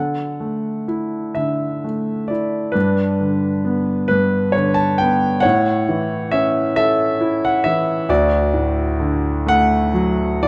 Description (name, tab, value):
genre	classical, lyrical solo piano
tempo	42-45 BPM (dotted quarters)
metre	6/8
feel	rubato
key	D major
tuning	A4 = 437 Hz
part	warm concert grand piano	solo	0.0-10.5 s	D2 to A5	-18 LUFS	equal	none
room	light reverb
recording	dark, warm production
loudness	-19 LUFS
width	mono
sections	0.0-10.5 A section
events	none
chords	0.0 Dsus2; 2.8 G; 5.4 A; 8.1 D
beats	1.37 | 2.75 4.10 | 5.44 6.76 | 8.10 9.47